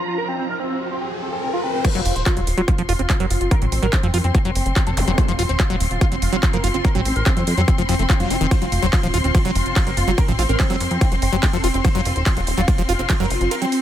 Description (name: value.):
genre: psychedelic trance.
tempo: 144 BPM.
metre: 4/4.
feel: straight.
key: unclear.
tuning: A4 = 444 Hz.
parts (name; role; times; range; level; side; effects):
wide unison lead; melody; 0.0-13.8 s; C4 to C5; -26 LUFS; equal; phaser, sidechain pumping, tape echo.
swarming drone; sustained chords; 0.0-13.8 s; F3 to F4; -30 LUFS; right 2 dB; built-in reverb, sidechain pumping.
riser and zap; sound effects; 0.0-1.8, 5.0-5.1 s; none; -28 LUFS; equal; none.
warm studio string section; texture; 0.0-13.8 s; F4 to C6; -28 LUFS; left 6 dB; sidechain pumping.
liquid acid bass; riff; 1.8-13.7 s; Eb3 to Gb4; -25 LUFS; moving between left 7 dB and right 7 dB; chorus, auto-pan, sidechain pumping, tape echo.
electronic kick drum; drums; 1.8-13.2 s; none; -19 LUFS; equal; none.
techno drum kit; drums; 1.8-13.8 s; crash cymbal, handclaps, hi-hat, ride cymbal; -27 LUFS; right 1 dB; none.
plucky analog bass; bass; 1.9-13.5 s; Eb1 to F2; -21 LUFS; equal; none.
room: little or no reverb.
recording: low-pass filter.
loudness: -17 LUFS.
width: side -11 dB against mid.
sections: 0.0-1.8 A section; 1.8-13.8 B section.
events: riser 0.0-1.8; drop 1.8-13.8; kick drops out 13.5-13.8.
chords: 0.0 F5.